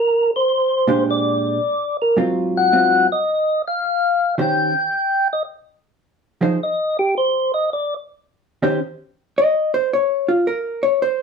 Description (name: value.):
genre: jazz.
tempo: 109 BPM.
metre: 4/4.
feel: swing 68% on 8ths.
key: unclear.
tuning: A4 = 439 Hz.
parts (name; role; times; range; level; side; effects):
percussive tonewheel organ; melody; 0.0-7.9 s; G4 to G5; -17 LUFS; left 1 dB; slow rotary speaker.
vintage hollow-body jazz guitar; accompaniment; 0.9-11.2 s; Ab2 to Eb5; -18 LUFS; equal; none.
room: moderate studio reverb, RT60 0.6 s.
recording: band playing live in one room.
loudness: -16 LUFS.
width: side -5 dB against mid.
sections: 0.0-8.8 A section; 8.8-11.2 A section.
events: tonewheel organ solo 0.0-8.8; hollow-body jazz guitar solo 8.8-11.2.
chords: 0.0 Bb13; 2.2 Ab6; 4.4 Eb6; 5.5 Fm7; 6.6 N.C.; 7.7 Ebmaj7; 8.8 N.C..